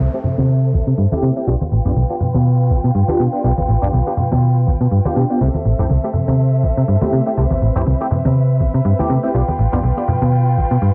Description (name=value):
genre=filtered disco house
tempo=122 BPM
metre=4/4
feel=swing 56% on 16ths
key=C major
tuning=A4 = 442 Hz
part: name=rich studio violin section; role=sustained chords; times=0.0-10.9 s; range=C4 to G5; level=-26 LUFS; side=equal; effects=vintage 12-bit sampler grit, low-pass filter
part: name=slap-like FM bass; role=bass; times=0.0-10.9 s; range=A1 to C3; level=-17 LUFS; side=equal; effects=low-pass filter
part: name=downlifter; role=sound effects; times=0.0-1.5 s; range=none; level=-48 LUFS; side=equal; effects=none
part: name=funky polysynth comp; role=accompaniment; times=0.1-10.0 s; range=A3 to G4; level=-24 LUFS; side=equal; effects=chorus, phaser, low-pass filter
part: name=tambourine and congas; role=percussion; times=0.1-10.9 s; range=none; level=-25 LUFS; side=equal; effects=low-pass filter on perc
room=little or no reverb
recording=none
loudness=-16 LUFS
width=mono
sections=0.0-10.9 A section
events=filter sweep 0.0-10.9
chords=0.0 C6; 1.5 G7; 5.4 C6; 9.3 G7